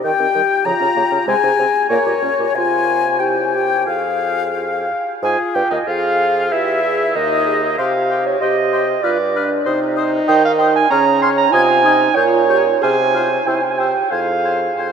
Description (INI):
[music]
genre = quick classical-period movement for wind quintet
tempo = 94 BPM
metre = 2/4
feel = rubato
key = F minor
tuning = A4 = 440 Hz
[part]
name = mellow silver concert flute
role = melody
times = 0.0-14.9 s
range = Db5 to Ab6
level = -21 LUFS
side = left 7 dB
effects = none
[part]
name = clear oboe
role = second line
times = 0.0-14.9 s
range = Eb4 to Bb5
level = -23 LUFS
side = left 4 dB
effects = none
[part]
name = dark clarinet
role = accompaniment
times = 0.0-14.9 s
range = Eb3 to C6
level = -18 LUFS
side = right 4 dB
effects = none
[part]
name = warm French horn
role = accompaniment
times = 0.0-14.9 s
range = Db4 to Bb4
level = -22 LUFS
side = left 1 dB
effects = none
[part]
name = dark bassoon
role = bass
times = 0.0-14.9 s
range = Eb2 to Eb3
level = -21 LUFS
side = right 3 dB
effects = none
[sound]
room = wet huge ambient reverb, RT60 7.7 s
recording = in a vast, echoing space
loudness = -14 LUFS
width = side -7 dB against mid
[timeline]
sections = 0.0-5.2 A section; 5.2-14.9 B section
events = none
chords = 0.0 Cm/Eb (rootless); 0.7 Bbm/Db; 1.3 Ab/C; 1.9 Gdim/Bb; 2.6 Fm/C; 3.2 C; 3.9 Fm; 6.5 Em; 7.2 Ebsus4; 7.8 Cm; 9.0 G7; 9.7 Cm; 10.3 Cm/Eb; 10.9 Bbm/Db; 11.5 Ab/C; 12.2 Gdim/Bb; 12.8 Fm/C; 13.5 C; 14.1 Fm